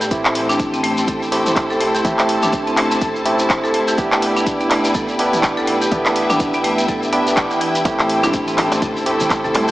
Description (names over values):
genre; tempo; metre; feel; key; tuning
afro house; 124 BPM; 4/4; swing 58% on 16ths; A minor; A4 = 440 Hz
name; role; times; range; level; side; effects
bright studio string section; sustained chords; 0.0-9.7 s; E4 to A5; -22 LUFS; left 1 dB; sidechain pumping
marimba with hard mallets; arpeggios; 0.0-9.7 s; E3 to A4; -22 LUFS; equal; sidechain pumping, analog delay
barky tine electric piano; stabs; 0.0-9.7 s; A3 to G4; -20 LUFS; right 1 dB; medium stereo tremolo, sidechain pumping, low-pass filter, analog delay
smooth synth bass; bass; 0.0-9.7 s; G1 to C2; -32 LUFS; equal; sidechain pumping
house drum kit; drums; 0.0-9.7 s; handclaps, hi-hat, toms; -22 LUFS; equal; none
shekere; percussion; 0.0-9.7 s; none; -29 LUFS; equal; none
electronic kick drum; drums; 0.1-9.4 s; none; -24 LUFS; equal; none
djembe; percussion; 7.9-9.7 s; none; -26 LUFS; right 1 dB; none
congas; percussion; 8.0-9.7 s; none; -27 LUFS; equal; none
room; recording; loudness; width
wet lush hall reverb, RT60 1.6 s, studio ambience; dreamy mix soaked in reverb, small speaker sound; -15 LUFS; side -16 dB against mid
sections
0.1-9.7 A section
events
drop 0.1-9.7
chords
0.1 Am7; 4.0 Em7/A; 7.9 Am7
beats
| 0.11 0.59 1.08 1.56 | 2.05 2.53 3.01 3.50 | 3.98 4.46 4.95 5.43 | 5.92 6.40 6.88 7.37 | 7.85 8.34 8.82 9.30